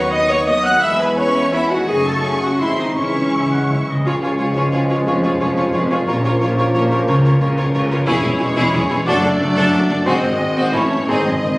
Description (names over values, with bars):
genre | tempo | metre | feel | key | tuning
classical, dramatic, fast romantic movement for symphony orchestra | 162-184 BPM | 3/4 | straight | C# minor, Db major from 4.1 s, C# minor from 8.1 s | A4 = 440 Hz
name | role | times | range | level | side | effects
clear symphonic violin section | melody | 0.0-11.6 s | Db5 to C#6 | -25 LUFS | left 1 dB | none
bright symphonic violin section | second line | 0.0-11.5 s | E4 to F#6 | -27 LUFS | left 1 dB | none
dark clarinet | second line | 0.0-11.2 s | C#4 to F#5 | -23 LUFS | equal | none
mellow hollow silver concert flute | second line | 0.0-11.3 s | C#5 to F#6 | -26 LUFS | equal | none
dark French horn section | sustained chords | 0.0-11.6 s | B3 to G#4 | -24 LUFS | left 1 dB | none
warm trombone section | sustained chords | 0.0-11.6 s | C#3 to Bb3 | -23 LUFS | equal | none
rich symphonic cello section | bass | 0.0-11.5 s | Db2 to E4 | -25 LUFS | equal | none
rich symphonic double bass section | bass | 0.0-11.5 s | E1 to E2 | -23 LUFS | equal | none
rich studio viola section | accompaniment | 0.1-11.5 s | B#3 to F#5 | -22 LUFS | equal | none
timpani | percussion | 3.0-4.0, 7.1-7.5, 10.1-11.6 s | G#2 to C#3 | -25 LUFS | equal | none
warm oboe | second line | 3.3-11.2 s | B#4 to F#5 | -26 LUFS | equal | none
warm tuba | bass | 4.1-11.5 s | E1 to Db2 | -26 LUFS | equal | none
room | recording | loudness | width
wet scoring stage reverb, RT60 1.6 s | recorded on a phone in the room, studio reverb | -14 LUFS | side -22 dB against mid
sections
0.0-4.1 A section; 4.1-11.6 B section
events
timpani fill 3.0-4.1, 11.1-11.6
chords
0.0 B/D#; 0.8 E; 1.9 F#m; 2.6 G#; 3.0 C#m; 4.1 Db; 5.1 Db/F; 6.1 Bbm; 7.1 Bbm/Db; 8.1 C#m/E; 9.1 D/F#; 10.1 G#7; 10.7 A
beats
0.12 0.48 | 0.83 1.18 1.53 | 1.89 2.25 2.61 | 2.97 3.34 3.71 | 4.07 4.40 4.74 | 5.07 5.41 5.74 | 6.08 6.42 6.75 | 7.09 7.42 7.75 | 8.07 8.40 8.73 | 9.06 9.40 9.73 | 10.06 10.39 10.73 | 11.08 11.44